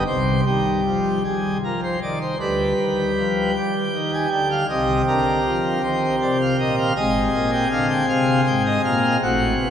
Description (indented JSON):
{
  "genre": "classical, chorale-style piece for pipe organ",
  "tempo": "79 BPM",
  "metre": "3/4",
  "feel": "rubato",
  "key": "C minor",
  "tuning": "A4 = 440 Hz",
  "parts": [
    { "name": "pipe organ, plenum", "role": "solo", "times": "0.0-9.7 s", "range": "Ab1 to Ab5", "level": "-18 LUFS", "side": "equal", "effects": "none" }
  ],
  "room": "wet cathedral reverb, RT60 5.3 s",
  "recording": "recorded in a church or concert hall",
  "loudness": "-18 LUFS",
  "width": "side -8 dB against mid",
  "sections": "0.1-9.7 A section",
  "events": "none",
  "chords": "0.1 Cm; 2.4 G7/D; 4.7 Cm; 7.0 Ab"
}